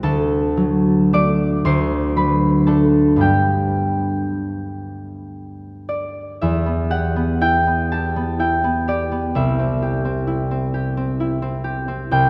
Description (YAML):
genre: classical, solo harp piece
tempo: 35-44 BPM (dotted quarters)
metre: 6/8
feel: rubato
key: unclear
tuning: A4 = 440 Hz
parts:
  - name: concert harp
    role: solo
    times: 0.0-12.3 s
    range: C2 to D6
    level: -19 LUFS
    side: equal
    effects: none
room: wet cathedral reverb, RT60 4.4 s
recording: none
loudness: -19 LUFS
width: mono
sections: 0.0-6.4 A section; 6.4-12.3 B section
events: none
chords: 0.0 D; 1.7 D7; 3.2 G; 6.4 Em; 9.3 C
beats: | 0.03 1.65 | 3.21 4.81 | 6.42 7.91 | 9.35 10.73 | 12.12